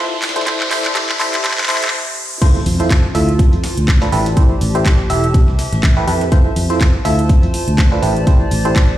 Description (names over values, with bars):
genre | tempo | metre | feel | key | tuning
piano house | 123 BPM | 4/4 | swing 56% on 16ths | A minor | A4 = 436 Hz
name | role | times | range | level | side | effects
warm chamber string section | sustained chords | 0.0-1.9 s | C5 to C6 | -31 LUFS | left 3 dB | none
barking FM electric piano | riff | 0.0-8.7 s | D4 to E5 | -20 LUFS | right 1 dB | chorus, phaser, tremolo, sidechain pumping, tape echo
riser and impact | sound effects | 0.0-4.4 s | none | -23 LUFS | equal | none
warbly tape-like pad | texture | 0.0-9.0 s | F4 to A5 | -25 LUFS | equal | chorus, built-in reverb, sidechain pumping
breakbeat sampler-style drum kit | drums | 0.2-8.9 s | hi-hat, snare drum | -32 LUFS | left 1 dB | sidechain pumping on hats, high-pass filter on hats, high-pass filter on snare, high-pass filter on room
house drum kit | drums | 0.2-8.9 s | crash cymbal, handclaps, hi-hat | -22 LUFS | equal | high-pass filter on snare, high-pass filter on hats, high-pass filter on cymbals, high-pass filter on room
electronic kick drum | drums | 0.5-8.9 s | none | -12 LUFS | equal | high-pass filter on kick, high-pass filter on room
fingered electric bass | bass | 2.7-9.0 s | E1 to F2 | -17 LUFS | equal | tube saturation, sidechain pumping
room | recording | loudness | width
light reverb, digital ambience | played on a big sound system in a bare room, stone room reverb, high-pass filter | -12 LUFS | side -13 dB against mid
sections
0.0-2.4 A section; 2.4-9.0 B section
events
build-up 0.0-2.4; drum fill 0.0-1.9; riser 0.0-2.4; stop 1.9-2.4; drop 2.4-9.0; impact 2.4-4.4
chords
0.2 Am7; 2.4 Fmaj7; 3.4 Dm7; 4.1 Am7; 6.3 Fmaj7; 7.3 Dm7; 8.0 Am7